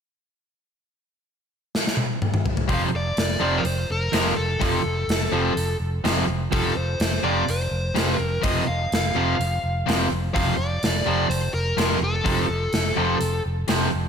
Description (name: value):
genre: hard rock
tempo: 125 BPM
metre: 4/4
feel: straight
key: F major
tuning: A4 = 440 Hz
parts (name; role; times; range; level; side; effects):
- gated 80s drum kit; drums; 1.7-13.8 s; hi-hat, kick drum, snare drum, toms; -25 LUFS; equal; none
- smooth overdriven lead guitar; melody; 2.7-13.4 s; A4 to F5; -27 LUFS; equal; none
- distorted electric guitar; riff; 2.7-13.9 s; F2 to F3; -28 LUFS; left 11 dB; overdrive, slapback echo
- overdriven semi-hollow guitar; riff; 2.7-13.9 s; F2 to F3; -28 LUFS; right 10 dB; slapback echo
- fingered electric bass; bass; 2.7-14.1 s; F1; -26 LUFS; equal; none
room: moderate lush hall reverb, RT60 1.7 s, small room ambience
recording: big arena sound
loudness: -20 LUFS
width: side -7 dB against mid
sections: 0.8-2.7 A section; 2.7-14.1 B section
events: drum fill 1.7-2.7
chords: 0.8 N.C.; 2.7 F5